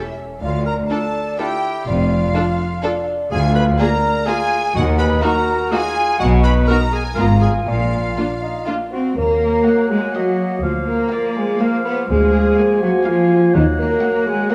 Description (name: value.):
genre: cinematic.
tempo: 124 BPM.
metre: 3/4.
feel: straight.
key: D minor, Eb minor from 3.3 s.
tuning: A4 = 438 Hz.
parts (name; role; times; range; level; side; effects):
rich studio violin section; melody; 0.0-14.5 s; F4 to Gb5; -32 LUFS; equal; none.
bright studio violin section; second line; 0.0-14.5 s; Eb5 to Cb6; -33 LUFS; equal; none.
large flute ensemble; second line; 0.0-14.5 s; Eb5 to C6; -28 LUFS; equal; none.
warm clarinet; second line; 0.0-14.5 s; Bb3 to Cb5; -29 LUFS; equal; none.
mellow bassoon; accompaniment; 0.0-14.5 s; F3 to Gb4; -27 LUFS; equal; none.
warm French horn section; sustained chords; 0.0-14.5 s; Gb3 to C5; -22 LUFS; equal; none.
rich studio cello section; bass; 0.4-14.5 s; D2 to C4; -24 LUFS; equal; none.
rich studio double bass section; bass; 0.4-13.9 s; F1 to Eb2; -22 LUFS; equal; none.
rich studio viola section; accompaniment; 0.9-14.5 s; Bb3 to F4; -29 LUFS; equal; none.
warm oboe; second line; 9.7-14.5 s; D5 to Ab5; -29 LUFS; equal; none.
room: wet scoring stage reverb, RT60 1.7 s.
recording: dark, warm production.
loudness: -17 LUFS.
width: mono.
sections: 0.0-9.2 A section; 9.2-14.5 B section.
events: none.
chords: 0.4 Dm; 1.9 Dm/F; 3.3 Bb7/D; 4.8 Ebm; 6.2 B; 7.2 Fdim/Ab; 7.7 Bb; 9.2 Ebm; 10.6 Bb/D; 12.1 Bb7/D; 13.5 Ebm.